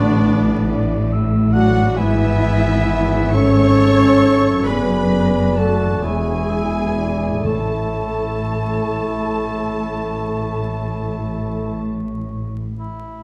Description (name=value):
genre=classical, slow romantic movement for symphony orchestra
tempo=40-48 BPM (dotted quarters)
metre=12/8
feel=rubato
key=A major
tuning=A4 = 438 Hz
part: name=rich studio violin section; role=melody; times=0.0-11.8 s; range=D5 to C#6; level=-35 LUFS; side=equal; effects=none
part: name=mellow clarinet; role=second line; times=0.0-11.8 s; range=D4 to C#5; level=-30 LUFS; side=equal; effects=none
part: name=mellow cor anglais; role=second line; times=0.0-13.2 s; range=E4 to G#5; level=-32 LUFS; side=equal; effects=none
part: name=rich studio violin section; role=second line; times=0.0-11.8 s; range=D5 to C#6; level=-35 LUFS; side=equal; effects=none
part: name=silver concert flute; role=second line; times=0.0-11.8 s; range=D5 to C#6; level=-31 LUFS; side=equal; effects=none
part: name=warm studio viola section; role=accompaniment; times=0.0-11.8 s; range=D4 to C#5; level=-27 LUFS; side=equal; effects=none
part: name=mellow French horn section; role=sustained chords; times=0.0-11.8 s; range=D3 to C#4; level=-24 LUFS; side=equal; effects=none
part: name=concert harp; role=arpeggios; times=0.0-11.3 s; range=E2 to C#5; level=-32 LUFS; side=equal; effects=none
part: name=mellow trumpet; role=stabs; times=0.0-11.8 s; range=B3 to A4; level=-28 LUFS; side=equal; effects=none
part: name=rich studio cello section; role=bass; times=0.0-13.1 s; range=E2 to A2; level=-24 LUFS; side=equal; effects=none
part: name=warm studio double bass section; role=bass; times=0.0-13.1 s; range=E1 to A1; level=-25 LUFS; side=equal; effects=none
part: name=timpani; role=percussion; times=7.4-8.9 s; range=A2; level=-30 LUFS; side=equal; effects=none
room=moderate recital hall reverb, RT60 1.6 s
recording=dark, warm production, vinyl crackle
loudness=-18 LUFS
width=mono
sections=0.0-13.2 A section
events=none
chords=0.0 Bm7/A; 2.0 E/G#; 4.7 D/F#; 6.0 E13; 7.5 A